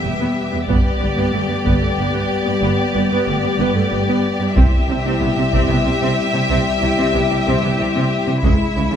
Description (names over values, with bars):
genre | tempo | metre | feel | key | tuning
cinematic, epic orchestral film score | 93 BPM | 3/4 | straight | unclear | A4 = 440 Hz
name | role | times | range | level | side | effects
rich studio violin section | melody | 0.0-9.0 s | D5 to E5 | -23 LUFS | left 4 dB | none
rich chamber violin section | second line | 0.0-9.0 s | E4 to G4 | -25 LUFS | left 3 dB | none
warm symphonic viola section | accompaniment | 0.0-9.0 s | G#3 to C4 | -23 LUFS | right 2 dB | none
dark French horn section | sustained chords | 0.0-9.0 s | G3 to E4 | -23 LUFS | left 4 dB | none
rich symphonic double bass section | bass | 0.0-8.8 s | E1 to C#2 | -24 LUFS | right 3 dB | none
warm chamber cello section | bass | 0.0-9.0 s | E2 to C#3 | -22 LUFS | right 2 dB | none
taiko ensemble | drums | 0.7-9.0 s | none | -18 LUFS | equal | none
room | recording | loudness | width
wet recital hall reverb, RT60 1.7 s | recorded in a church or concert hall | -15 LUFS | side -8 dB against mid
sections
0.0-9.0 A section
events
build-up 0.0-9.0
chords
0.0 Em; 0.7 G; 4.6 C; 8.4 C#m